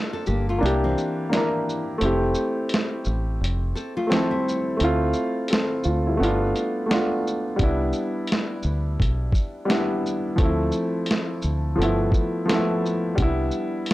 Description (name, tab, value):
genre	lo-fi hip hop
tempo	86 BPM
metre	4/4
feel	swing 62% on 16ths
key	C major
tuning	A4 = 440 Hz
part	dark upright piano	accompaniment	0.0-13.9 s	F3 to Bb4	-23 LUFS	equal	none
part	nylon-string guitar	second line	0.1-4.8 s	E3 to A4	-30 LUFS	left 2 dB	analog delay
part	deep dub fingered electric bass	bass	0.3-13.5 s	F1 to D2	-24 LUFS	equal	tube saturation
part	lo-fi sampler-style drum kit	drums	0.3-13.9 s	hi-hat, kick drum, shaker, snare drum	-24 LUFS	equal	none
room	digital ambience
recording	dry, gritty hardware recording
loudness	-21 LUFS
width	side -17 dB against mid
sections	0.0-13.9 A section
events	break 0.0-7.6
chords	0.0 Gm9; 0.6 C7; 2.0 Fmaj7; 4.8 Dm9; 6.2 G7; 7.6 Cmaj9 (rootless); 10.4 Dm7; 11.8 G13; 13.2 Cmaj9